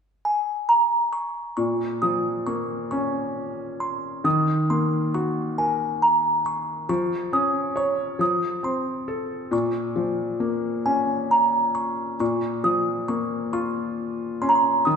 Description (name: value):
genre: children's music, lullaby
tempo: 45 BPM (dotted quarters)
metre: 6/8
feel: straight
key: Bb minor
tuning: A4 = 442 Hz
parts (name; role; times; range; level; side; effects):
- music box; melody; 0.3-15.0 s; Ab5 to Eb6; -23 LUFS; right 1 dB; none
- felt-muted upright piano; accompaniment; 1.6-15.0 s; Bb2 to Db5; -25 LUFS; left 2 dB; none
room: wet recital hall reverb, RT60 1.3 s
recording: recorded in a church or concert hall, faint mains hum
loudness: -21 LUFS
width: side -6 dB against mid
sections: 0.0-1.6 A section; 1.6-12.2 B section; 12.2-15.0 B section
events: none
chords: 0.0 N.C.; 1.6 Bbm; 4.2 Ebm; 6.9 Dbadd9/F; 8.2 F; 9.5 Bbm